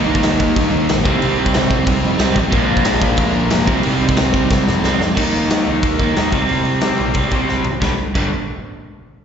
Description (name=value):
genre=punk rock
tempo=182 BPM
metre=4/4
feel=straight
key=G minor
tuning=A4 = 440 Hz
part: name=crunchy overdriven guitar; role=riff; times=0.0-8.3 s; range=G2 to Eb4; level=-20 LUFS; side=right 11 dB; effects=slapback echo
part: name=crunchy overdriven guitar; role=riff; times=0.0-5.2 s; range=Bb2 to Eb4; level=-21 LUFS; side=equal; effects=none
part: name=raw garage guitar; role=riff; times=0.0-8.3 s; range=G2 to Eb4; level=-21 LUFS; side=left 8 dB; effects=overdrive, slapback echo
part: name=growling picked electric bass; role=bass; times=0.0-8.3 s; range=F1 to Eb3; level=-22 LUFS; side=equal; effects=overdrive
part: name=big rock drum kit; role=drums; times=0.1-8.2 s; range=crash cymbal, hi-hat, kick drum, snare drum, toms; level=-19 LUFS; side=equal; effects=none
room=little or no reverb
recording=live gig heard through the venue's PA, recital hall reverb, nothing above 7.9 kHz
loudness=-14 LUFS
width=side -7 dB against mid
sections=0.0-5.2 A section; 5.2-7.8 B section; 7.8-9.2 C section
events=drum fill 4.5-5.2, 7.5-7.8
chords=0.0 Eb; 1.0 Cm; 2.5 Bb; 3.7 Cm; 5.2 Eb5; 6.3 C5; 7.8 G5